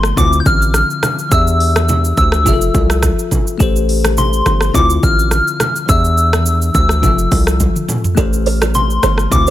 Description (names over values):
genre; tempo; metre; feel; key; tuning
afrobeats; 105 BPM; 4/4; swing 55% on 16ths; D minor; A4 = 440 Hz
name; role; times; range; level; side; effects
soft struck synth lead; melody; 0.0-9.5 s; C6 to G6; -17 LUFS; left 1 dB; chorus, tape echo
bell-like tine electric piano; accompaniment; 0.0-9.5 s; D3 to E5; -20 LUFS; left 7 dB; phaser
hard-hitting 808-style bass; bass; 0.0-9.5 s; F1 to E2; -15 LUFS; right 1 dB; none
afro-pop drum kit; drums; 0.0-9.5 s; hi-hat, kick drum, rim click, shaker, toms; -17 LUFS; right 1 dB; none
congas; percussion; 0.2-9.5 s; none; -24 LUFS; right 3 dB; none
buzzing kalimba; riff; 8.2-9.5 s; E4 to C5; -20 LUFS; right 8 dB; tape echo
room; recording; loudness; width
little or no reverb; none; -11 LUFS; side -13 dB against mid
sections
0.0-9.5 A section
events
drum fill 7.6-8.2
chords
0.2 Dm9; 1.3 Em7; 2.5 Fmaj7; 3.6 Am7; 4.7 Dm9; 5.9 Em7; 7.0 Fmaj7; 8.2 Am7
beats
0.17 0.74 | 1.32 1.89 2.46 3.03 | 3.60 4.17 4.74 5.32 | 5.89 6.46 7.03 7.60 | 8.17 8.74 9.32